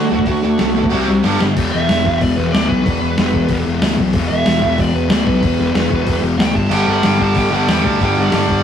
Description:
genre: punk rock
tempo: 186 BPM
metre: 4/4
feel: straight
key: E minor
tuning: A4 = 444 Hz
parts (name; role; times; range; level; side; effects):
- smooth overdriven lead guitar; melody; 0.0-8.6 s; F#4 to A5; -22 LUFS; right 2 dB; none
- sludgy distorted guitar; riff; 0.0-8.6 s; E2 to C4; -19 LUFS; left 4 dB; overdrive
- tight distorted guitar; riff; 0.0-1.5, 6.7-8.6 s; G2 to C4; -17 LUFS; right 4 dB; distortion
- fuzz picked electric bass; bass; 0.0-8.6 s; E1 to E2; -19 LUFS; equal; overdrive
- dusty soul sampler-style drum kit; drums; 0.2-8.6 s; crash cymbal, hi-hat, kick drum, snare drum; -19 LUFS; left 1 dB; none
room: light reverb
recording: rough rehearsal-room recording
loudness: -13 LUFS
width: side -8 dB against mid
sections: 0.0-1.6 A section; 1.6-8.6 B section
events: drum fill 1.2-1.6; lead electric guitar solo 1.6-8.6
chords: 0.0 D; 0.9 C5; 1.2 G5; 1.6 E5; 6.6 G5

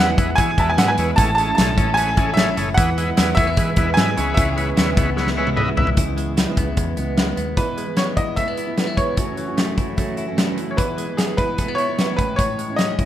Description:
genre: jangly indie pop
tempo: 150 BPM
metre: 4/4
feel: straight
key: E major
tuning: A4 = 440 Hz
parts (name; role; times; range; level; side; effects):
- bright upright piano; melody; 0.0-13.1 s; G#4 to A5; -22 LUFS; right 1 dB; tube saturation
- dark studio violin section; second line; 0.0-6.0 s; E4 to B4; -33 LUFS; left 2 dB; none
- combo organ; accompaniment; 0.0-5.9 s; C#4 to E5; -25 LUFS; left 1 dB; none
- fingerpicked steel-string acoustic guitar; accompaniment; 0.0-13.1 s; E2 to F#4; -28 LUFS; right 7 dB; none
- direct-recorded clean electric guitar; arpeggios; 0.0-13.1 s; F#2 to E4; -27 LUFS; left 4 dB; wide subtle chorus
- vintage muted fingered electric bass; bass; 0.0-7.5 s; F#1 to E3; -25 LUFS; equal; none
- big rock drum kit; drums; 0.2-13.1 s; hi-hat, kick drum, snare drum, toms; -20 LUFS; equal; none
room: light reverb, studio ambience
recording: rough home demo mix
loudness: -17 LUFS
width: side -12 dB against mid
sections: 0.0-6.0 A section; 6.0-7.6 B section; 7.6-13.1 C section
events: drum fill 5.2-6.0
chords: 0.0 E; 1.2 Amaj7; 2.8 E; 4.2 C#m7; 7.6 E; 9.2 F#m7; 10.8 E; 12.2 Amaj7

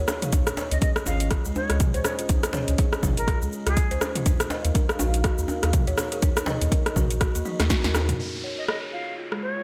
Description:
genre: afro house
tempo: 122 BPM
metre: 4/4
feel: swing 58% on 16ths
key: unclear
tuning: A4 = 440 Hz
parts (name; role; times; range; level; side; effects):
- dark analog pad; sustained chords; 0.0-9.6 s; Db4 to F5; -39 LUFS; equal; chorus, sidechain pumping
- buzzing kalimba; arpeggios; 0.0-9.6 s; Ab3 to Eb5; -35 LUFS; equal; sidechain pumping, low-pass filter, delay
- warm sub bass; bass; 0.0-8.1 s; Ab1 to Eb2; -28 LUFS; equal; sidechain pumping
- deep house drum kit; drums; 0.1-9.4 s; hi-hat, rim click, shaker, snare drum, toms; -30 LUFS; equal; overdrive
- djembe; percussion; 0.1-8.1 s; none; -35 LUFS; equal; none
- electronic kick drum; drums; 0.3-7.8 s; none; -26 LUFS; equal; overdrive
- silver concert flute; melody; 0.7-4.0, 8.6-9.6 s; Ab4 to F5; -35 LUFS; equal; delay
- downlifter; sound effects; 8.2-9.6 s; none; -37 LUFS; equal; none
room: light reverb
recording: none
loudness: -24 LUFS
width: mono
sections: 0.0-8.2 A section; 8.2-9.6 B section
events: drum fill 7.5-8.2; band accent 7.7; filter sweep on kalimba 8.2-9.6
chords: 0.3 Dbadd9; 4.3 Ebm; 8.2 Dbadd9

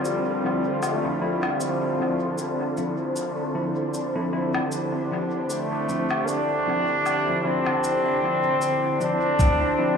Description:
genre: ambient dub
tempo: 77 BPM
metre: 4/4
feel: swing 56% on 16ths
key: D minor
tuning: A4 = 441 Hz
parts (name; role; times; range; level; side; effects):
- warm trombone; melody; 0.0-10.0 s; F3 to D4; -25 LUFS; left 1 dB; dub echo
- warm analog pad; sustained chords; 0.0-10.0 s; D3 to C5; -29 LUFS; equal; chorus, tremolo
- cabasa and woodblock; drums; 0.0-9.6 s; none; -34 LUFS; left 2 dB; dub echo
- wind-like tuned noise texture; texture; 0.0-9.4 s; C4 to A4; -33 LUFS; left 1 dB; built-in reverb
- tine electric piano; stabs; 0.4-10.0 s; F3 to E4; -30 LUFS; equal; medium stereo tremolo, vintage 12-bit sampler grit, low-pass filter, dub echo
- upright bass; bass; 9.4-9.6 s; D2; -25 LUFS; equal; none
- electronic kick drum; drums; 9.4-9.6 s; none; -21 LUFS; equal; none
room: wet cathedral reverb, RT60 6.5 s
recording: dreamy mix soaked in reverb, small room ambience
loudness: -22 LUFS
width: side -6 dB against mid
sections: 0.0-9.4 A section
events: none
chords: 0.0 Dm9

